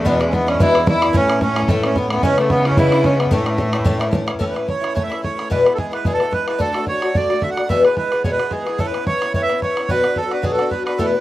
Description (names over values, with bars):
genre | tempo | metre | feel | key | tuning
celtic folk, Celtic reel | 219 BPM | 4/4 | swing 55% on 8ths | A major | A4 = 440 Hz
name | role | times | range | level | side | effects
accordion | melody | 0.0-11.2 s | G#3 to F#5 | -21 LUFS | right 4 dB | none
clear fiddle | second line | 0.0-4.1 s | G#3 to E4 | -24 LUFS | left 4 dB | slapback echo
concert harp | second line | 0.0-6.6 s | G#3 to F#4 | -30 LUFS | equal | none
picked twelve-string acoustic guitar | accompaniment | 0.0-11.2 s | E2 to G#4 | -20 LUFS | left 2 dB | none
dark cello | bass | 0.0-4.4 s | E2 to C#3 | -22 LUFS | equal | none
bodhran | percussion | 0.1-11.1 s | none | -22 LUFS | right 1 dB | none
room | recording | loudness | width
little or no reverb | recorded outdoors, with no room sound | -15 LUFS | side -15 dB against mid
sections
0.0-4.4 A section; 4.4-11.2 B section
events
none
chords
0.0 E7; 1.1 A; 2.2 C#m7; 3.3 A; 5.5 E; 6.6 D; 7.7 E; 8.8 Aadd9; 9.9 Bm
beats
| 0.06 0.33 0.60 0.88 | 1.15 1.42 1.69 1.96 | 2.23 2.50 2.78 3.05 | 3.32 3.59 3.86 4.13 | 4.41 4.68 4.95 5.23 | 5.50 5.77 6.05 6.32 | 6.60 6.87 7.14 7.42 | 7.69 7.97 8.24 8.52 | 8.79 9.07 9.34 9.62 | 9.89 10.16 10.44 10.71 | 10.99